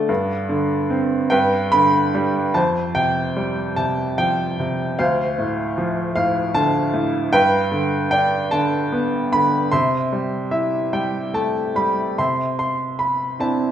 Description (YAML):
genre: classical, lyrical solo piano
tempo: 50 BPM (dotted quarters)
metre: 6/8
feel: rubato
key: C major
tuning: A4 = 437 Hz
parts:
  - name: bright baby grand piano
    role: solo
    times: 0.0-13.7 s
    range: D2 to C6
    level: -18 LUFS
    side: equal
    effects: none
room: wet recital hall reverb, RT60 1.5 s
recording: recorded in a church or concert hall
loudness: -18 LUFS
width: side -10 dB against mid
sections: 0.0-2.6 A section; 2.6-12.2 B section; 12.2-13.7 C section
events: none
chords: 0.1 Gsus4; 1.3 G; 2.6 Fsus2; 5.0 Dm7; 7.3 G; 9.7 C6; 12.2 Cadd9